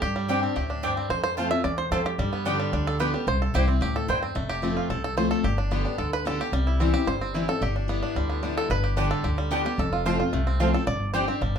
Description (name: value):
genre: bluegrass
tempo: 221 BPM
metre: 4/4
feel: straight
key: unclear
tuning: A4 = 441 Hz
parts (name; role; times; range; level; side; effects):
- bluegrass banjo; melody; 0.0-11.6 s; G3 to E5; -28 LUFS; right 2 dB; none
- picked steel-string acoustic guitar; accompaniment; 0.0-11.6 s; E2 to G4; -28 LUFS; left 2 dB; none
- upright bass; bass; 0.0-11.6 s; F1 to G2; -28 LUFS; equal; none
- mandolin; stabs; 0.3-4.2, 9.0-11.2 s; B3 to A5; -30 LUFS; right 2 dB; none
room: wet small room reverb, RT60 0.5 s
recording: heard from further back in the room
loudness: -23 LUFS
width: side -8 dB against mid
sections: 0.0-4.4 A section; 4.4-11.6 A section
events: five-string banjo solo 0.0-11.6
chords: 0.0 Gsus4; 1.1 F; 2.2 G; 3.3 C; 4.4 F; 5.4 G; 6.5 C; 7.6 G6; 8.7 Gadd9; 9.8 F; 10.9 Gsus4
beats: | 0.02 0.29 0.56 0.83 | 1.10 1.38 1.65 1.92 | 2.19 2.46 2.73 3.00 | 3.27 3.54 3.81 4.09 | 4.36 4.63 4.90 5.17 | 5.44 5.71 5.99 6.26 | 6.53 6.80 7.07 7.34 | 7.62 7.89 8.16 8.43 | 8.70 8.97 9.25 9.52 | 9.79 10.06 10.33 10.61 | 10.88 11.15 11.42